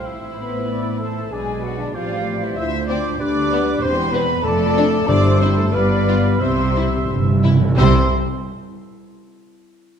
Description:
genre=quick classical-period movement for symphony orchestra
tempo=87-96 BPM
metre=2/4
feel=straight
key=C major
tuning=A4 = 439 Hz
part: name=warm studio violin section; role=melody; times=0.0-8.2 s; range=B3 to C5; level=-29 LUFS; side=left 3 dB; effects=none
part: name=dark clarinet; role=second line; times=0.0-8.1 s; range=D4 to E5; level=-28 LUFS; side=right 1 dB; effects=none
part: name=large flute ensemble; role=second line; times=0.0-8.2 s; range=D5 to E6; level=-27 LUFS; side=equal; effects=none
part: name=warm oboe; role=second line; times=0.0-8.1 s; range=B4 to F5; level=-30 LUFS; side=equal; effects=none
part: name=warm studio violin section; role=second line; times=0.0-8.1 s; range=D4 to E5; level=-28 LUFS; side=left 3 dB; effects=none
part: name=dark bassoon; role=accompaniment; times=0.0-8.1 s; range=F3 to C4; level=-28 LUFS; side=equal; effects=none
part: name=dark studio viola section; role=accompaniment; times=0.0-8.1 s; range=E4 to E5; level=-29 LUFS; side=equal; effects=none
part: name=mellow French horn section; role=sustained chords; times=0.0-8.1 s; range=D3 to E4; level=-25 LUFS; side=left 5 dB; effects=none
part: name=dark studio double bass section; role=bass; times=0.0-8.1 s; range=E1 to D2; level=-22 LUFS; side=right 2 dB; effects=none
part: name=warm studio cello section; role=bass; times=0.0-8.2 s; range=D2 to C3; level=-24 LUFS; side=right 1 dB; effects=none
part: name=timpani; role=percussion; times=5.1-8.1 s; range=G2 to C3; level=-21 LUFS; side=right 2 dB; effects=none
room=wet scoring stage reverb, RT60 1.8 s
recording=dark, warm production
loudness=-16 LUFS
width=side -8 dB against mid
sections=0.0-7.8 A section; 7.8-9.1 B section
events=timpani fill 6.4-7.8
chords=0.1 Am; 1.3 G#dim/B; 1.9 Am7; 2.6 Dm7; 3.2 G/D; 3.8 C/E; 4.4 Dm/F; 5.1 C/G; 5.7 G7; 6.4 C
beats=| 0.06 0.69 | 1.32 1.95 | 2.57 3.20 | 3.82 4.45 | 5.08 5.73 | 6.41 7.09 | 7.77

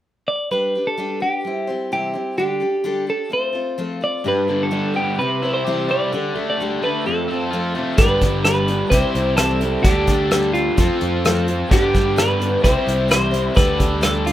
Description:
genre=folk rock and heartland rock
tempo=129 BPM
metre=4/4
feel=straight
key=G major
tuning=A4 = 440 Hz
part: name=twelve-string electric guitar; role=melody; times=0.3-14.3 s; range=F4 to D5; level=-21 LUFS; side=right 1 dB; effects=slapback echo, plate reverb
part: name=picked steel-string acoustic guitar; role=accompaniment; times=0.5-14.3 s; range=C3 to C5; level=-26 LUFS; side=left 4 dB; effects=plate reverb
part: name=crunchy overdriven guitar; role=riff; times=4.3-14.3 s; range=F2 to A4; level=-22 LUFS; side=equal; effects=none
part: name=picked electric bass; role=bass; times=8.0-14.3 s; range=G1 to G2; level=-23 LUFS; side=equal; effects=none
part: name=soft brush drum kit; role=drums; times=8.0-14.3 s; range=hi-hat, kick drum, rim click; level=-18 LUFS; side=equal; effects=none
room=light reverb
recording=rough home demo mix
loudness=-17 LUFS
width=side -12 dB against mid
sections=0.5-8.0 A section; 8.0-14.3 B section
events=none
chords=0.0 N.C.; 0.5 G; 1.4 C; 2.4 Dsus4; 3.3 F; 4.3 G; 5.2 C; 6.1 Dsus4; 7.1 F; 8.0 G; 8.9 C; 9.9 Dsus4; 10.8 F; 11.7 G; 12.6 C; 13.6 Dsus4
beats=0.04 | 0.51 0.98 1.45 1.92 | 2.38 2.85 3.32 3.79 | 4.25 4.72 5.19 5.66 | 6.12 6.59 7.06 7.52 | 7.99 8.46 8.92 9.39 | 9.85 10.32 10.78 11.25 | 11.72 12.18 12.65 13.11 | 13.58 14.04

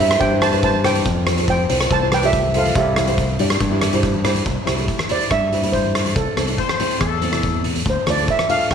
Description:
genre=calypso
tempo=141 BPM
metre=4/4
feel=straight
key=C major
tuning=A4 = 438 Hz
part: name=steel pan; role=melody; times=0.0-8.7 s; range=G4 to A5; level=-20 LUFS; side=right 1 dB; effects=none
part: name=nylon-string guitar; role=accompaniment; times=0.0-8.7 s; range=C4 to E5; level=-25 LUFS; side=equal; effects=double-tracked left and right
part: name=modern bright fingered electric bass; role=bass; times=0.0-8.7 s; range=A1 to G2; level=-22 LUFS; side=left 1 dB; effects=none
part: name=oversized low-tuned drum kit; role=drums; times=0.0-8.7 s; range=hi-hat, kick drum, rim click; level=-21 LUFS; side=equal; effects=none
part: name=congas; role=percussion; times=0.2-8.6 s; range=none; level=-31 LUFS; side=left 9 dB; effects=none
part: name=brilliant horn section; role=second line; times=6.6-7.7 s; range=A4 to C5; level=-24 LUFS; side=left 9 dB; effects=none
room=moderate plate reverb, RT60 1.7 s, small room ambience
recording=1960s-style stereo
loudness=-16 LUFS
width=side -7 dB against mid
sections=0.0-4.5 A section; 4.5-8.7 B section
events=nylon-string guitar fill 3.6-4.5; steel pan solo 4.5-8.7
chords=0.0 C; 1.1 Fadd9; 2.8 C; 6.2 Am/C; 7.9 Dm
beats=0.21 0.64 | 1.06 1.48 1.91 2.33 | 2.76 3.18 3.61 4.03 | 4.46 4.88 5.31 5.73 | 6.16 6.58 7.01 7.43 | 7.86 8.28 8.71

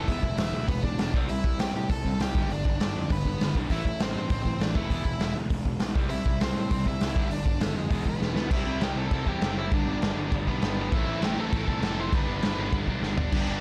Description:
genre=punk rock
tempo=199 BPM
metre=4/4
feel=straight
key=unclear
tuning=A4 = 441 Hz
part: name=high-gain lead guitar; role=melody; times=0.0-13.6 s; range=G#3 to C6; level=-36 LUFS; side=equal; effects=distortion
part: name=distorted electric guitar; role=riff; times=0.0-13.6 s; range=G2 to G4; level=-38 LUFS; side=equal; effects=none
part: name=overdriven semi-hollow guitar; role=riff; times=0.0-13.6 s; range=E2 to C4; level=-37 LUFS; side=equal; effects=none
part: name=fuzz picked electric bass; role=bass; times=0.0-13.6 s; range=E1 to A2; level=-35 LUFS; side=equal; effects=overdrive
part: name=raw garage drum kit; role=drums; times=0.1-13.5 s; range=crash cymbal, hi-hat, kick drum, snare drum, toms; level=-30 LUFS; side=equal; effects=none
part: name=distorted electric guitar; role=riff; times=10.9-13.6 s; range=G2 to E4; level=-39 LUFS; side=equal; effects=overdrive
room=little or no reverb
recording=none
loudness=-27 LUFS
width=mono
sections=0.0-8.5 A section; 8.5-13.3 B section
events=drum fill 8.2-8.5, 13.0-13.3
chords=0.1 E; 1.1 C; 2.3 G; 3.7 Am; 4.9 E; 6.0 C; 7.2 G5; 7.9 E; 8.5 C; 9.7 G; 10.9 Am; 12.1 G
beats=| 0.09 0.39 0.69 0.99 | 1.29 1.59 1.89 2.19 | 2.50 2.80 3.10 3.40 | 3.70 4.00 4.30 4.60 | 4.91 5.21 5.51 5.81 | 6.11 6.41 6.71 7.01 | 7.31 7.61 7.92 8.22 | 8.52 8.82 9.12 9.42 | 9.72 10.02 10.32 10.62 | 10.92 11.22 11.53 11.82 | 12.13 12.43 12.73 13.03 | 13.33

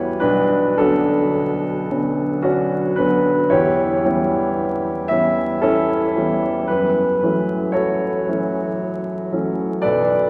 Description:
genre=classical, impressionist solo piano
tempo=57 BPM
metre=3/4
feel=rubato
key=unclear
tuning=A4 = 438 Hz
part: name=warm concert grand piano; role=solo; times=0.0-10.3 s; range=B1 to E5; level=-19 LUFS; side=equal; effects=none
room=wet cathedral reverb, RT60 4.5 s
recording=vinyl crackle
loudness=-19 LUFS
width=mono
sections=0.0-10.3 A section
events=none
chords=0.2 Bm9; 3.5 Em6; 6.7 F#m7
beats=| 0.21 1.34 2.44 | 3.51 4.55 5.62 | 6.68 7.74 8.79 | 9.83

